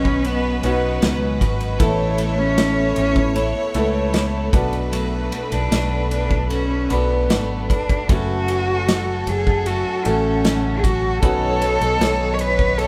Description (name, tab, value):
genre	pop ballad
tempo	77 BPM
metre	4/4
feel	straight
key	unclear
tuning	A4 = 440 Hz
part	warm cello	melody	0.0-12.9 s	A3 to C#5	-25 LUFS	equal	none
part	rich studio violin section	second line	0.0-12.9 s	A4 to C#5	-30 LUFS	equal	none
part	clear grand piano	accompaniment	0.0-12.9 s	A2 to B4	-29 LUFS	equal	none
part	airy breathy pad	sustained chords	0.0-12.9 s	A4 to C#6	-33 LUFS	equal	chorus
part	twelve-string electric guitar	arpeggios	0.0-12.9 s	F#2 to A4	-32 LUFS	equal	delay
part	fingered electric bass	bass	0.0-12.9 s	E1 to C#2	-26 LUFS	equal	none
part	loose indie drum kit	drums	0.1-12.9 s	kick drum, ride cymbal, snare drum	-25 LUFS	equal	none
room	moderate large studio reverb, RT60 0.9 s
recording	band playing live in one room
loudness	-19 LUFS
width	mono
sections	0.0-12.9 A section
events	none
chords	0.0 Badd9; 1.8 Asus2; 4.5 Bm7; 8.1 F#madd9; 11.2 Badd9